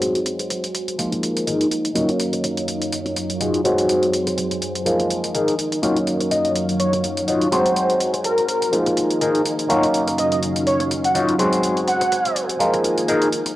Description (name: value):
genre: filtered disco house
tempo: 124 BPM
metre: 4/4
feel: swing 55% on 16ths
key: Eb dorian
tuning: A4 = 439 Hz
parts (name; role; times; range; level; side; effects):
- clav; accompaniment; 0.0-13.5 s; F3 to F5; -22 LUFS; equal; phaser, vintage 12-bit sampler grit, low-pass filter, cassette tape
- string machine, full ensemble; sustained chords; 0.0-13.6 s; Gb3 to Ab5; -25 LUFS; equal; ensemble chorus, vintage 12-bit sampler grit, low-pass filter, cassette tape
- clean electric guitar; riff; 0.0-13.5 s; Eb4 to Db5; -22 LUFS; left 2 dB; phaser, low-pass filter, cassette tape
- electronic hi-hat; drums; 0.0-13.5 s; none; -27 LUFS; equal; cassette tape
- analog synth brass; melody; 6.3-12.4 s; Bb4 to Gb5; -22 LUFS; equal; chorus, cassette tape, low-pass filter
room: moderate spring reverb, RT60 1.8 s, digital ambience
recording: home recording on cassette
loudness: -18 LUFS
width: side -15 dB against mid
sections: 0.0-13.6 A section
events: filter sweep 0.0-13.6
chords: 0.0 Ab7; 1.0 Bb7sus4; 2.0 Ebm9; 3.7 Ab7; 4.9 Bb7sus4; 5.8 Ebm9; 7.5 Ab7; 8.7 Bb7sus4; 9.7 Ebm9; 11.4 Ab7; 12.6 Bb7sus4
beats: | 0.02 0.51 0.99 1.47 | 1.96 2.44 2.93 3.41 | 3.89 4.38 4.86 5.34 | 5.83 6.31 6.80 7.28 | 7.76 8.25 8.73 9.22 | 9.70 10.18 10.67 11.15 | 11.64 12.12 12.60 13.09